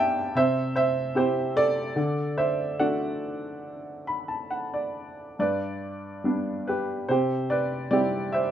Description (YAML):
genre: classical, lyrical solo piano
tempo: 67-75 BPM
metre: 4/4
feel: rubato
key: unclear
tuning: A4 = 440 Hz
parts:
  - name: clear upright piano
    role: solo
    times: 0.0-8.5 s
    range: G2 to B5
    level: -24 LUFS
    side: right 1 dB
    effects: none
room: light reverb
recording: minimal, uncompressed stereo recording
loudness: -24 LUFS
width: side -10 dB against mid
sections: 0.0-8.5 A section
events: upright piano fill 3.6-5.4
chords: 0.4 C; 2.0 D; 5.4 G; 7.1 C